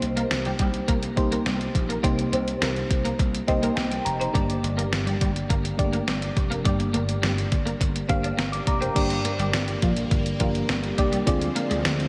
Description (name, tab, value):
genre	1980s-style pop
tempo	104 BPM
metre	4/4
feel	straight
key	unclear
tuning	A4 = 439 Hz
part	FM electric piano	accompaniment	0.0-12.1 s	G2 to D6	-29 LUFS	equal	phaser, slapback echo
part	twelve-string electric guitar	riff	0.0-11.8 s	F3 to D4	-33 LUFS	equal	ensemble chorus, tape echo, slapback echo
part	vintage slap bass	bass	0.0-12.1 s	F1 to D2	-32 LUFS	equal	none
part	clean 12-bit digital drum machine	drums	0.0-12.1 s	crash cymbal, hi-hat, kick drum, snare drum	-28 LUFS	equal	none
part	string machine, full ensemble	sustained chords	9.0-12.1 s	D3 to F4	-34 LUFS	equal	phaser, ensemble chorus
room	moderate lush hall reverb, RT60 2.8 s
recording	big arena sound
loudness	-24 LUFS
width	mono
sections	0.0-9.0 A section; 9.0-12.1 B section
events	FM electric piano fill 3.2-4.3, 11.8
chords	0.0 Cm7; 4.3 Gm; 11.3 Dm7b5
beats	0.31 0.89 1.46 | 2.04 2.62 3.19 3.77 | 4.35 4.92 5.50 6.08 | 6.66 7.23 7.81 8.38 | 8.96 9.54 10.12 10.69 | 11.27 11.85